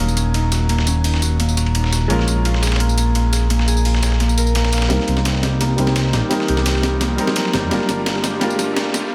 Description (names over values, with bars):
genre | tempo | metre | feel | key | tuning
liquid drum and bass | 171 BPM | 4/4 | straight | unclear | A4 = 440 Hz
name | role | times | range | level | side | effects
bright grand piano | accompaniment | 0.0-9.1 s | Gb3 to Bb4 | -27 LUFS | equal | low-pass filter, delay
Celtic harp | arpeggios | 0.0-9.1 s | Bb3 to F5 | -26 LUFS | equal | low-pass filter, delay
smooth gliding synth bass | bass | 0.0-9.0 s | Eb1 to F2 | -21 LUFS | equal | tube saturation
breakbeat sampler-style drum kit | drums | 0.1-9.0 s | hi-hat, snare drum, tambourine | -26 LUFS | equal | none
dusty soul sampler-style drum kit | drums | 0.2-9.0 s | hi-hat, ride cymbal, snare drum | -29 LUFS | equal | high-pass filter on cymbals, high-pass filter on snare, high-pass filter on hats
riser | sound effects | 6.4-9.1 s | none | -33 LUFS | equal | none
room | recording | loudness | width
light reverb, digital ambience | high-pass filter | -18 LUFS | mono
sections
0.0-4.9 A section; 4.9-9.1 B section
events
build-up 4.9-9.1; drum fill 4.9-9.1; filter sweep on grand piano 4.9-9.1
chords
0.0 Ebm7; 2.1 Bbm7; 4.9 Cm7; 7.7 Gm7